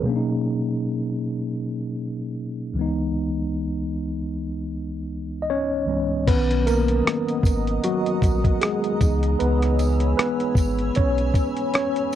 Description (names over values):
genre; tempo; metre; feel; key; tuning
lo-fi hip hop; 77 BPM; 4/4; swing 56% on 16ths; B major; A4 = 439 Hz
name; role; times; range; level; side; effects
mellow tine electric piano; accompaniment; 0.0-12.2 s; C#2 to D#5; -23 LUFS; equal; medium stereo tremolo, cassette tape
granular cloud pad; sustained chords; 7.0-12.2 s; C#5 to E6; -31 LUFS; right 2 dB; built-in reverb
sub bass with octave; bass; 6.3-11.3 s; G#1 to C#2; -23 LUFS; equal; none
dusty soul sampler-style drum kit; drums; 6.3-12.2 s; crash cymbal, hi-hat, kick drum, rim click; -22 LUFS; equal; none
tambourine; percussion; 6.7-12.2 s; none; -43 LUFS; right 6 dB; none
room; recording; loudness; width
little or no reverb; dark, warm production; -21 LUFS; side -11 dB against mid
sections
0.0-6.3 A section; 6.3-12.2 B section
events
tine electric piano solo 6.3-12.2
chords
0.0 Bmaj7; 2.8 C#m7; 6.3 Bmaj7; 9.0 C#m7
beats
| 0.05 0.83 1.61 2.38 | 3.16 3.94 4.72 5.50 | 6.28 7.06 7.84 8.62 | 9.40 10.18 10.96 11.74